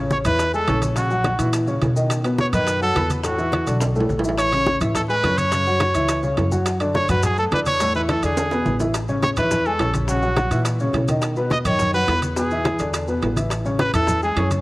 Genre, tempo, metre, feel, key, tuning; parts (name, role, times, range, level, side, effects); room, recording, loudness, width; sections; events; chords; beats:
latin, salsa; 210 BPM; 4/4; straight; A major; A4 = 440 Hz
dark upright piano; accompaniment; 0.0-14.6 s; A2 to D6; -24 LUFS; left 1 dB; cassette tape
upright bass; bass; 0.0-14.6 s; A1 to B2; -24 LUFS; equal
bright trumpet; melody; 0.1-14.5 s; F#4 to D#5; -22 LUFS; equal
bongos; percussion; 0.1-14.6 s; -33 LUFS; left 3 dB
congas; percussion; 0.1-14.6 s; -27 LUFS; equal
maracas; percussion; 0.1-14.6 s; -36 LUFS; left 2 dB
timbales; percussion; 0.1-14.6 s; -28 LUFS; right 3 dB
light reverb; home recording on cassette; -18 LUFS; side -20 dB against mid
0.0-8.9 A section; 8.9-14.6 A section
drum fill 3.8-4.4, 8.4-8.9
0.0 Amaj7; 1.0 F#7/A#; 2.1 B7; 3.2 E7sus4; 4.4 Amaj7; 5.5 F#5; 6.7 E13sus4; 7.8 E7sus4; 8.4 E7; 8.9 Amaj7; 10.1 F#7/A#; 11.2 B; 12.4 E7sus4; 13.5 Amaj7
0.11 0.39 0.68 | 0.96 1.25 1.53 1.82 | 2.10 2.39 2.67 2.96 | 3.24 3.53 3.81 4.10 | 4.38 4.67 4.95 5.24 | 5.52 5.81 6.09 6.38 | 6.66 6.95 7.23 7.52 | 7.80 8.09 8.37 8.66 | 8.94 9.23 9.51 9.80 | 10.08 10.37 10.65 10.94 | 11.22 11.51 11.79 12.08 | 12.37 12.65 12.94 13.22 | 13.51 13.79 14.08 14.36